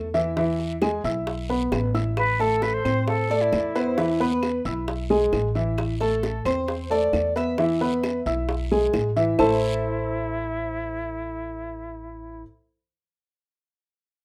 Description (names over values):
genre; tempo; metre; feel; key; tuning
latin, Cuban son and guajira; 133 BPM; 4/4; straight; A harmonic minor; A4 = 440 Hz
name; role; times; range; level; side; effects
warm grand piano; arpeggios; 0.0-12.4 s; E3 to E6; -26 LUFS; equal; none
upright bass; bass; 0.0-12.4 s; A1 to A2; -32 LUFS; equal; none
bongos; percussion; 0.1-9.5 s; none; -32 LUFS; equal; none
guiro; percussion; 0.1-9.5 s; none; -44 LUFS; equal; none
claves; percussion; 0.8-9.5 s; none; -42 LUFS; equal; none
bright reedy jazz flute; second line; 2.2-4.3, 9.4-12.4 s; E4 to C5; -30 LUFS; equal; none
Cuban tres; melody; 2.4-12.4 s; A4 to E5; -31 LUFS; equal; none
room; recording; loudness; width
moderate studio reverb, RT60 0.6 s; rough home demo mix; -24 LUFS; mono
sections
0.0-2.2 A section; 2.2-9.4 B section; 9.4-13.0 C section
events
drum fill 1.7-2.2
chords
0.4 E; 2.2 Am; 4.0 E; 5.8 Am; 7.6 E; 9.4 Am